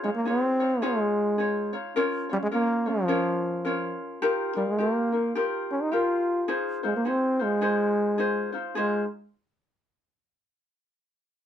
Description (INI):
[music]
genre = hawaiian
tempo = 106 BPM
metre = 4/4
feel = swing 60% on 8ths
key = Ab major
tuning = A4 = 439 Hz
[part]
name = warm trombone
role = melody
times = 0.0-9.1 s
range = F3 to F4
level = -25 LUFS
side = equal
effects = none
[part]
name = ukulele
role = accompaniment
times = 0.0-9.0 s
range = Db4 to Db5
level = -28 LUFS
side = left 2 dB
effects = none
[sound]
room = moderate small room ambience, RT60 0.5 s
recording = none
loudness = -24 LUFS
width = side -9 dB against mid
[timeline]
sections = 0.0-8.8 A section; 8.8-11.0 B section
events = none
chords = 0.0 Dbadd9; 2.0 Bbm; 4.2 Ebadd9; 6.5 Ab6